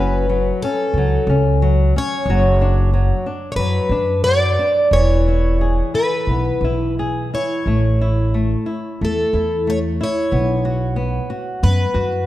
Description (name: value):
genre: fado-style ballad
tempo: 89 BPM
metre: 4/4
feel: uneven beats, rubato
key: unclear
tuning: A4 = 440 Hz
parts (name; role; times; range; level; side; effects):
- picked plugged-in twelve-string acoustic guitar; melody; 0.0-12.2 s; A4 to D5; -20 LUFS; equal; none
- flamenco guitar; accompaniment; 0.0-12.3 s; E3 to G#4; -22 LUFS; left 2 dB; none
- upright bass; bass; 0.0-12.3 s; E1 to F#2; -18 LUFS; equal; none
room: light reverb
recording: dark, warm production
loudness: -15 LUFS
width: side -14 dB against mid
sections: 0.0-12.3 A section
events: none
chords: 0.0 F#m; 2.3 Bm/F#; 4.9 E; 7.7 A; 10.3 B5